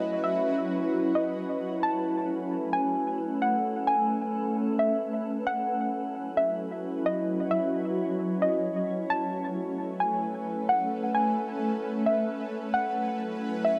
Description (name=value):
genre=hip hop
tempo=132 BPM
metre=4/4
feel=half-time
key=A lydian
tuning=A4 = 440 Hz
part: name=shimmering ambient pad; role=sustained chords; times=0.0-13.8 s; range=F#3 to C#5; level=-31 LUFS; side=equal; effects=chorus, built-in reverb
part: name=soft round pluck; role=melody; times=0.2-13.8 s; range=D#5 to A5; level=-31 LUFS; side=equal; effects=chorus, analog delay
room=moderate plate reverb, RT60 2.7 s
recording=echo-heavy mix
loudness=-28 LUFS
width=mono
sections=0.0-9.1 A section; 9.1-13.8 B section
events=none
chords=0.0 C#m11; 1.8 Amaj9; 5.5 C#m11; 9.1 Amaj9; 12.7 C#m11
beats=| 0.01 0.47 0.92 1.38 | 1.83 2.28 2.74 3.19 | 3.65 4.10 4.56 5.01 | 5.47 5.92 6.38 6.83 | 7.28 7.74 8.19 8.65 | 9.10 9.56 10.01 10.47 | 10.92 11.38 11.83 12.28 | 12.74 13.19 13.65